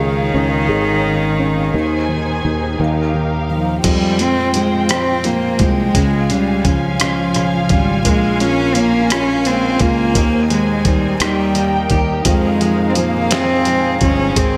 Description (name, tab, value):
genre	six-eight pop ballad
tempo	57 BPM (dotted quarters)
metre	6/8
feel	straight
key	unclear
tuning	A4 = 440 Hz
part	warm cello	melody	0.0-14.6 s	Eb3 to Db4	-20 LUFS	equal	slapback echo, tape echo
part	dark upright piano	accompaniment	0.0-14.6 s	Db3 to Ab4	-24 LUFS	equal	none
part	dark studio string section	sustained chords	0.0-14.6 s	Eb4 to Ab5	-25 LUFS	equal	none
part	sustaining fretless electric bass	bass	0.0-14.6 s	G1 to F2	-24 LUFS	equal	none
part	picked steel-string acoustic guitar	arpeggios	3.8-14.6 s	Eb3 to Ab4	-28 LUFS	equal	slapback echo
part	dusty soul sampler-style drum kit	drums	3.8-14.5 s	crash cymbal, hi-hat, kick drum, rim click, snare drum	-21 LUFS	equal	none
room	moderate lush hall reverb, RT60 2.9 s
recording	big arena sound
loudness	-16 LUFS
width	mono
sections	0.0-3.8 A section; 3.8-14.6 B section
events	none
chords	0.0 Dbadd9; 1.7 Ab/Eb; 2.8 Ebadd9; 3.8 Fmadd9; 5.9 Db; 8.1 Bbm7; 10.2 Ab/Eb; 11.2 Eb; 12.3 Fm7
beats	0.69 | 1.74 2.79 | 3.85 4.90 | 5.95 7.00 | 8.05 9.10 | 10.15 11.21 | 12.26 13.31 | 14.36